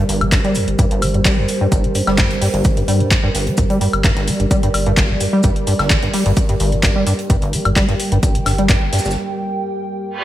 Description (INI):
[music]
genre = acid house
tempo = 129 BPM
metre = 4/4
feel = straight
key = unclear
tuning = A4 = 439 Hz
[part]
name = dark analog pad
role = sustained chords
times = 0.0-10.2 s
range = G3 to G5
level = -22 LUFS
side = right 1 dB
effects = chorus, sidechain pumping
[part]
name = deep acid bass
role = riff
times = 0.0-9.2 s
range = G1 to G3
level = -19 LUFS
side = equal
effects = tube saturation, analog chorus, cassette tape
[part]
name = booming analog drum machine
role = drums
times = 0.1-9.0 s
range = handclaps, hi-hat, woodblock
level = -21 LUFS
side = left 1 dB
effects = small room ambience, gated reverb
[part]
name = unplugged drum kit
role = drums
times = 0.1-9.2 s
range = hi-hat, shaker, snare drum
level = -30 LUFS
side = right 1 dB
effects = none
[part]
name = saturated sub bass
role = bass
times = 0.2-8.9 s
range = G1 to G2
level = -22 LUFS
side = equal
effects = sidechain pumping
[part]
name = electronic kick drum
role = drums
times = 0.3-8.8 s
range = none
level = -17 LUFS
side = equal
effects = overdrive, small room ambience
[part]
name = reverse cymbal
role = sound effects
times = 10.1-10.2 s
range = none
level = -21 LUFS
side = right 3 dB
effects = none
[sound]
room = light reverb, small room ambience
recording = bright 1980s-style digital production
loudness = -14 LUFS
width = side -13 dB against mid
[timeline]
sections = 0.0-10.2 A section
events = break 9.2-10.2; reverse cymbal 10.1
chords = 0.0 Gm